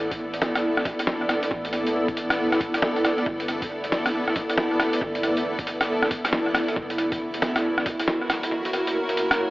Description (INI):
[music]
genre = future garage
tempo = 137 BPM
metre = 4/4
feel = swing 62% on 16ths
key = unclear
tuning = A4 = 440 Hz
[part]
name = granular cloud pad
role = sustained chords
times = 0.0-9.5 s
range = B3 to D5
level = -24 LUFS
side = equal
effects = built-in reverb, sidechain pumping
[part]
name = soft 808-style bass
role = bass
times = 0.0-8.5 s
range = F#1 to A1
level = -48 LUFS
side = equal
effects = sidechain pumping
[part]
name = electronic kick drum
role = drums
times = 0.1-8.0 s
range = none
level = -32 LUFS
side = equal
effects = vintage 12-bit sampler grit
[part]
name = lo-fi sampler-style drum kit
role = drums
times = 0.1-9.4 s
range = hi-hat, rim click, snare drum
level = -26 LUFS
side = equal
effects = vintage 12-bit sampler grit, tape echo
[sound]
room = moderate echo chamber reverb, RT60 1.4 s, digital ambience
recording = echo-heavy mix, vinyl crackle, AM radio sound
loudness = -22 LUFS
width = side -19 dB against mid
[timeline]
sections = 0.0-9.5 A section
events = none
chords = 0.0 Asus24; 3.3 Gadd9; 6.8 F#7